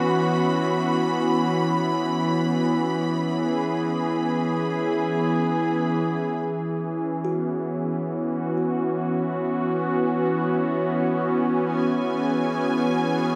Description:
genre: ambient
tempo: free time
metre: none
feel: none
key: E major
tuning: A4 = 440 Hz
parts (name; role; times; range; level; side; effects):
- warm analog pad; sustained chords; 0.0-13.4 s; E3 to G#4; -24 LUFS; equal; subtle chorus
- bowed-like drone; drone; 0.0-13.4 s; E3 to B3; -36 LUFS; equal; none
- clear symphonic violin section; texture; 0.0-6.4, 11.7-13.4 s; G#5 to B5; -34 LUFS; equal; none
- kalimba; arpeggios; 7.2-9.3 s; F#4; -37 LUFS; equal; none
room: wet plate reverb, RT60 3.1 s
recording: dreamy mix soaked in reverb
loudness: -24 LUFS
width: mono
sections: 0.0-6.4 A section; 6.4-13.4 B section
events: none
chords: 0.0 E6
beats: free time

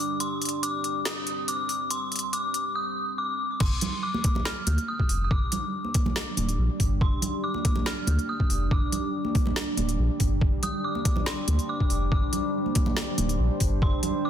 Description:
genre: deep dubstep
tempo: 141 BPM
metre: 4/4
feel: half-time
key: unclear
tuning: A4 = 440 Hz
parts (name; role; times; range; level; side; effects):
- dark detuned synth bell; melody; 0.0-14.3 s; C6 to F6; -32 LUFS; left 1 dB; chorus, dub echo
- deep dark ambient pad; sustained chords; 0.0-14.3 s; G3 to C5; -32 LUFS; right 1 dB; chorus, built-in reverb
- deep house drum kit; drums; 0.2-14.1 s; crash cymbal, hi-hat, snare drum; -31 LUFS; left 1 dB; small room ambience
- saturated sub bass; bass; 3.6-13.9 s; D1 to D2; -26 LUFS; equal; none
- electronic kick drum; drums; 3.6-13.9 s; none; -25 LUFS; equal; overdrive, small room ambience
- congas; percussion; 3.8-14.1 s; none; -33 LUFS; right 3 dB; dub echo
room: light reverb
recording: dense, heavily limited modern master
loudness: -24 LUFS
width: side -10 dB against mid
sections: 0.0-3.6 A section; 3.6-14.3 B section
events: build-up 0.0-3.6; drop 3.6-14.3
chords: 0.0 G5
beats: | 0.20 0.63 1.05 1.48 | 1.90 2.33 2.75 3.18 | 3.61 4.03 4.46 4.88 | 5.31 5.73 6.16 6.58 | 7.01 7.44 7.86 8.29 | 8.71 9.14 9.56 9.99 | 10.41 10.84 11.27 11.69 | 12.12 12.54 12.97 13.39 | 13.82 14.24

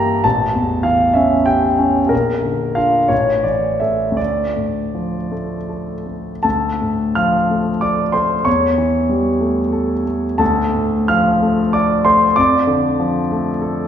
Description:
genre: classical, romantic character piece for solo piano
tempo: 52-66 BPM (dotted quarters)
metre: 6/8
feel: rubato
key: D minor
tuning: A4 = 440 Hz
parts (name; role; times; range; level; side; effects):
- clear concert grand piano; solo; 0.0-13.9 s; A1 to F6; -14 LUFS; equal; none
room: wet recital hall reverb, RT60 1.7 s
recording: heard from further back in the room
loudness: -14 LUFS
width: side -9 dB against mid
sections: 0.0-6.4 A section; 6.4-13.9 A section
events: none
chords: 0.2 A7; 2.1 Bb; 3.1 A5; 4.2 Dm; 8.5 A7/E; 10.4 Dm; 12.4 Dm/F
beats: | 0.25 1.16 | 2.12 3.11 | 4.18 5.32 | 6.44 7.49 | 8.46 9.42 | 10.40 11.42 | 12.38 13.32

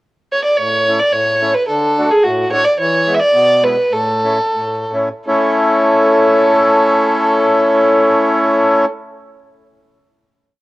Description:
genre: alpine folk, alpine dance band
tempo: 76-111 BPM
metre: 2/4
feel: swing 54% on 8ths, rubato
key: A major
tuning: A4 = 442 Hz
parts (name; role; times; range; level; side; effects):
- dark fiddle; melody; 0.3-8.9 s; F#4 to E5; -15 LUFS; right 1 dB; cassette tape, plate reverb
- accordion; accompaniment; 0.6-8.9 s; A2 to F#4; -13 LUFS; left 1 dB; cassette tape, plate reverb
room: wet booth ambience, RT60 0.3 s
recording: home recording on cassette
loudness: -11 LUFS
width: side -18 dB against mid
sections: 0.0-0.6 pickup bar; 0.6-5.3 A section; 5.3-8.3 final chord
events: slowing down 2.8-5.3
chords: 0.0 N.C.; 0.6 A; 1.7 D; 2.8 E; 3.9 A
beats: 0.03 | 0.58 1.13 | 1.68 2.23 | 2.77 3.32 | 3.90 4.55 | 5.28 6.05 | 6.81 7.57

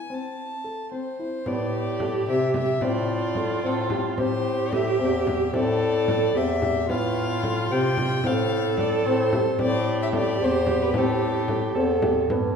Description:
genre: contemporary instrumental, chamber music in an uneven meter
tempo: 222 BPM (eighths)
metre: 5/8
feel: straight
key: A minor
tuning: A4 = 440 Hz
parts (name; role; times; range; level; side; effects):
- warm violin; melody; 0.0-11.8 s; A4 to A5; -29 LUFS; left 2 dB; none
- dark grand piano; arpeggios; 0.1-12.6 s; B3 to A4; -28 LUFS; left 2 dB; none
- warm viola; second line; 1.5-12.3 s; F4 to A4; -26 LUFS; right 3 dB; none
- clear bass clarinet; bass; 1.5-12.6 s; E2 to C3; -27 LUFS; left 1 dB; none
- frame drum; percussion; 1.5-12.6 s; none; -32 LUFS; left 1 dB; none
room: wet recital hall reverb, RT60 1.5 s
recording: heard from further back in the room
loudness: -21 LUFS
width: side -6 dB against mid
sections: 0.0-1.5 A section; 1.5-12.3 B section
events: none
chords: 0.1 Am; 1.5 Am11; 2.8 Dm7/A; 4.2 Am7; 6.9 Fadd9/A; 8.2 F69/A; 9.6 Am7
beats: | 0.10 0.38 0.65 0.92 1.19 | 1.46 1.74 2.01 2.28 2.55 | 2.82 3.10 3.37 3.64 3.91 | 4.18 4.45 4.72 4.99 5.26 | 5.54 5.81 6.08 6.35 6.62 | 6.89 7.16 7.43 7.70 7.97 | 8.24 8.52 8.79 9.06 9.33 | 9.60 9.87 10.14 10.41 10.68 | 10.95 11.22 11.49 11.76 12.03 | 12.30

